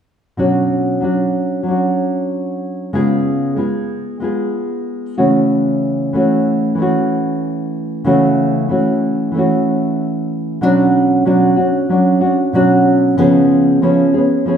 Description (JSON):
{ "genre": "pop", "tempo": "94 BPM", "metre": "4/4", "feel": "straight", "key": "unclear", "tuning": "A4 = 438 Hz", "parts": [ { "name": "nylon-string guitar", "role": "accompaniment", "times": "0.4-14.6 s", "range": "B2 to G#4", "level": "-13 LUFS", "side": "equal", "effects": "none" } ], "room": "wet large studio reverb, RT60 1.3 s", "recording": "band playing live in one room", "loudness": "-13 LUFS", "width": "side -8 dB against mid", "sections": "0.4-10.6 A section; 10.6-14.6 B section", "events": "none", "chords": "0.4 Bmadd9; 2.9 C#7; 5.2 F#m7/C#; 10.6 Bmadd9; 13.2 C#7" }